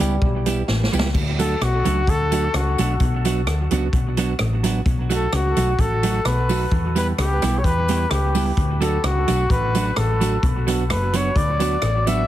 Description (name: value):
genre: ska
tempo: 129 BPM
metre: 4/4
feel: swing 54% on 8ths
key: unclear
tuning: A4 = 440 Hz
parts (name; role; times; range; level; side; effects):
- clear trombone; melody; 0.0-0.7 s; G3; -32 LUFS; equal; dub echo
- clean electric guitar; accompaniment; 0.0-12.2 s; F#3 to G4; -24 LUFS; right 5 dB; tube saturation, dub echo
- hollow-body short-scale fingered electric bass; bass; 0.0-12.2 s; F#1 to E2; -22 LUFS; equal; none
- tambourine; percussion; 0.0-12.2 s; none; -36 LUFS; left 8 dB; none
- swinging big-band drum kit; drums; 0.2-12.2 s; crash cymbal, hi-hat, kick drum, rim click, snare drum; -24 LUFS; equal; none
- breathy trumpet; melody; 1.4-12.3 s; F#4 to E5; -24 LUFS; left 2 dB; dub echo
room: moderate studio reverb, RT60 0.5 s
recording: heavily compressed radio sound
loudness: -18 LUFS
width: side -13 dB against mid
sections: 0.0-1.1 A section; 1.1-12.3 B section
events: drum fill 0.7-1.1; trumpet solo 1.1-12.3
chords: 0.0 Em; 1.1 D; 3.0 Bm; 4.9 B7; 6.7 Em; 8.6 D; 10.4 Bm